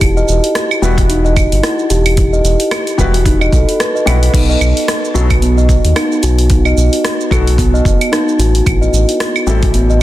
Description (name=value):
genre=organic downtempo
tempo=111 BPM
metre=4/4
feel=swing 57% on 16ths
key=E harmonic minor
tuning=A4 = 438 Hz
part: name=steel tongue drum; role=arpeggios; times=0.0-10.0 s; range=B3 to D#5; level=-15 LUFS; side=equal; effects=digital delay
part: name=round analog bass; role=bass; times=0.0-10.0 s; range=E1 to D#2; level=-12 LUFS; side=equal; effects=none
part: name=deep house drum kit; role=drums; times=0.0-10.0 s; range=claves, crash cymbal, hi-hat, rim click, shaker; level=-19 LUFS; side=right 1 dB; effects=soft clipping on snare
part: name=electronic kick drum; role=drums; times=0.0-9.7 s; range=none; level=-14 LUFS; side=equal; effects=none
part: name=felt-muted upright piano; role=accompaniment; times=0.8-9.6 s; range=F#3 to B4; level=-22 LUFS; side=left 4 dB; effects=sidechain pumping, digital delay
part: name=quartz singing bowl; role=texture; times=4.3-10.0 s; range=B3 to B4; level=-26 LUFS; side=right 6 dB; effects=none
room=light reverb, digital ambience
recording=dense, heavily limited modern master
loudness=-10 LUFS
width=side -15 dB against mid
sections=0.0-10.0 A section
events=none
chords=0.0 Emadd9; 4.3 B7; 8.7 A5